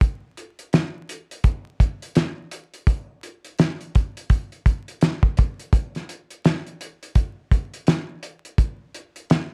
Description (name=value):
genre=hip hop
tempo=84 BPM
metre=4/4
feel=swing 61% on 16ths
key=none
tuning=none
part: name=cloth-damped thuddy drum kit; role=drums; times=0.0-9.5 s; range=hi-hat, kick drum, snare drum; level=-21 LUFS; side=equal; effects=none
room=light reverb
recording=vinyl crackle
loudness=-23 LUFS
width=mono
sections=0.0-9.5 A section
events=none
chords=none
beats=| 0.01 0.73 1.44 2.16 | 2.87 3.59 4.30 5.01 | 5.73 6.44 7.16 7.87 | 8.59 9.30